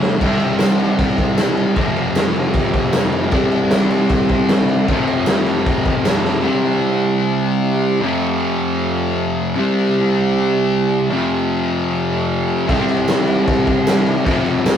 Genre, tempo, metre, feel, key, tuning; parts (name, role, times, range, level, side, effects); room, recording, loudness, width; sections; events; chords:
garage rock duo or trio; 154 BPM; 4/4; straight; A4 = 443 Hz
fuzz guitar; riff; 0.0-14.8 s; F2 to C4; -16 LUFS; equal; distortion
raw garage drum kit; drums; 0.0-6.3, 12.7-14.7 s; crash cymbal, kick drum, snare drum; -18 LUFS; equal
tambourine; percussion; 0.6-6.1, 13.1-14.7 s; -35 LUFS; right 3 dB
moderate studio ambience, RT60 0.5 s; rough rehearsal-room recording, warm saturation; -14 LUFS; side -8 dB against mid
0.0-6.5 A section; 6.5-14.8 A section
drum fill 0.0, 6.3
0.2 C5; 1.8 F5; 3.3 C5; 4.9 F5; 6.5 C5; 8.0 F5; 9.6 C5; 11.1 F5; 12.7 C5; 14.3 F5